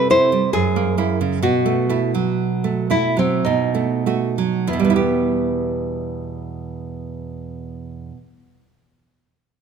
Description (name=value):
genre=romantic duo for nylon-string guitar and classical guitar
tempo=46-71 BPM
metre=3/4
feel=rubato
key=E minor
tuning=A4 = 440 Hz
part: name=nylon-string guitar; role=melody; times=0.0-8.1 s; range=C4 to C5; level=-21 LUFS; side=left 2 dB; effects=none
part: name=nylon-string guitar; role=accompaniment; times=0.0-8.4 s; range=E2 to G4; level=-20 LUFS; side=right 5 dB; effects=none
room=moderate recital hall reverb, RT60 1.8 s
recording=none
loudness=-17 LUFS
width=side -6 dB against mid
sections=0.0-4.7 A section; 4.7-8.3 B section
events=slowing down 0.0-4.7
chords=0.0 C; 0.5 F#7; 1.4 B7sus4; 3.5 B7; 4.7 Em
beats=0.54 | 1.44 2.39 3.45 | 4.69 5.90 7.09